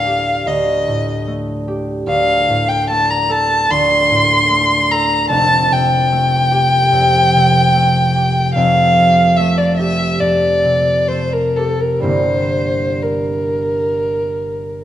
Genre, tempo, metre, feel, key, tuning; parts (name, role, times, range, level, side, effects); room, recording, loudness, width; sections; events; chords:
classical, impressionist duo for violin and harp; 61-76 BPM; 4/4; rubato; A4 = 440 Hz
dark violin; melody; 0.0-14.8 s; A4 to C6; -14 LUFS; left 1 dB
concert harp; accompaniment; 0.0-14.8 s; F1 to Bb4; -17 LUFS; right 1 dB
wet recital hall reverb, RT60 1.6 s; dark, warm production; -12 LUFS; side -11 dB against mid
0.0-14.8 A section
0.0 Dmadd11; 2.1 D5; 5.3 Fadd9; 12.0 Gm6